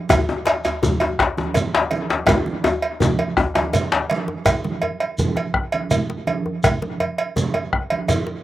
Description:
west african traditional, West African drum ensemble; 110 BPM (dotted quarters); 12/8; straight
bombo; percussion; 0.1-7.9 s; -23 LUFS; left 2 dB
congas; percussion; 0.1-8.3 s; -25 LUFS; right 3 dB
cowbell; percussion; 0.1-8.3 s; -22 LUFS; right 3 dB
djembe; percussion; 0.1-8.4 s; -26 LUFS; left 2 dB
djembe; percussion; 0.1-4.1 s; -21 LUFS; left 4 dB; slapback echo
shekere; percussion; 0.1-8.3 s; -28 LUFS; equal
little or no reverb; recorded outdoors, with no room sound; -18 LUFS; side -14 dB against mid
0.0-4.5 A section; 4.5-8.4 B section
drum fill 2.3-4.5
| 0.10 0.65 1.19 1.74 | 2.28 2.83 3.37 3.92 | 4.46 5.01 5.55 6.09 | 6.64 7.18 7.72 8.27

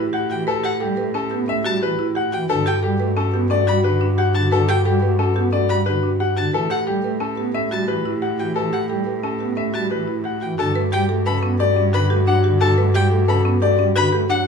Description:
classical, minimalist pattern music; 178 BPM; 6/4; straight; A4 = 440 Hz
mellow French horn; second line; 0.0-14.4 s; F#4 to G4; -26 LUFS; left 3 dB
buzzing marimba with medium mallets; arpeggios; 0.0-14.5 s; C#4 to B4; -25 LUFS; right 2 dB
rich cello; bass; 0.0-14.5 s; G2 to A2; -22 LUFS; right 1 dB
bright grand piano; melody; 0.1-14.5 s; G4 to F#5; -24 LUFS; left 8 dB
pipe organ, principal; accompaniment; 0.3-14.4 s; C#3 to B3; -26 LUFS; right 3 dB
rich violin; arpeggios; 0.3-14.4 s; F#5 to B5; -26 LUFS; left 2 dB
light reverb; small room ambience; -17 LUFS; side -6 dB against mid
0.0-10.6 A section; 10.6-14.5 B section
0.0 A9; 2.5 Gmaj9; 6.5 A9; 10.6 Gmaj9
0.14 | 0.47 0.81 1.15 1.48 1.82 2.16 | 2.49 2.83 3.17 3.50 3.84 4.18 | 4.52 4.85 5.19 5.53 5.87 6.20 | 6.54 6.88 7.21 7.55 7.89 8.22 | 8.56 8.90 9.24 9.57 9.91 10.25 | 10.58 10.92 11.26 11.60 11.93 12.27 | 12.61 12.94 13.28 13.62 13.96 14.29

